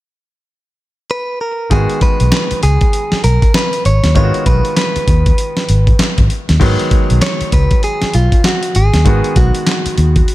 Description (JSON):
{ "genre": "R&B, new jack swing", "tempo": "98 BPM", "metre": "4/4", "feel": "swing 61% on 16ths", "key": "G# minor", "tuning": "A4 = 439 Hz", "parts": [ { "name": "direct-recorded clean electric guitar", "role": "melody", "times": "1.1-10.3 s", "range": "E#4 to C#5", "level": "-19 LUFS", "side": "equal", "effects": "none" }, { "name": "bright concert grand piano", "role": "accompaniment", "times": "1.7-10.3 s", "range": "D#3 to F#4", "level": "-21 LUFS", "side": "equal", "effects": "none" }, { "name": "vintage muted fingered electric bass", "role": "bass", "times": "1.7-10.2 s", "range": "G#1 to D#2", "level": "-12 LUFS", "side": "equal", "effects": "none" }, { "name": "dusty soul sampler-style drum kit", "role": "drums", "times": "1.7-10.3 s", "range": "crash cymbal, handclaps, hi-hat, kick drum, snare drum", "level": "-14 LUFS", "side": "equal", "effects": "gated reverb" } ], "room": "digital ambience", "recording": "none", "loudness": "-10 LUFS", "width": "side -16 dB against mid", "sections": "0.0-1.7 A section; 1.7-6.6 B section; 6.6-10.3 C section", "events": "none", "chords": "0.0 N.C.; 1.7 G#m7" }